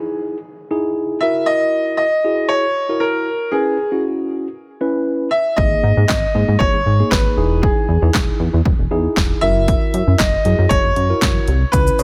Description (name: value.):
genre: dance-pop.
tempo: 117 BPM.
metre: 4/4.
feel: straight.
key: unclear.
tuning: A4 = 440 Hz.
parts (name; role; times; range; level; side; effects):
mellow tine electric piano; accompaniment; 0.0-12.0 s; A#3 to B4; -24 LUFS; equal; sidechain pumping.
downlifter and riser; sound effects; 0.0-1.5, 11.7-12.0 s; none; -47 LUFS; equal; none.
clear concert grand piano; melody; 1.2-12.0 s; G#4 to E5; -21 LUFS; equal; none.
chorused synth bass; bass; 5.6-12.0 s; E1 to C#3; -19 LUFS; equal; sidechain pumping.
punchy analog drum machine; drums; 5.6-12.0 s; handclaps, hi-hat, kick drum, shaker, snare drum; -21 LUFS; equal; none.
room: digital ambience.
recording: none.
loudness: -17 LUFS.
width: mono.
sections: 0.0-12.0 A section.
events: none.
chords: 0.0 Emaj7; 1.2 F#7; 3.5 C#m7; 5.6 G#sus2; 7.4 Emaj7; 9.4 F#7.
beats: 0.45 0.96 | 1.48 1.99 2.50 3.02 | 3.53 4.04 4.55 5.07 | 5.58 6.09 6.61 7.12 | 7.63 8.14 8.66 9.17 | 9.68 10.20 10.71 11.22 | 11.73.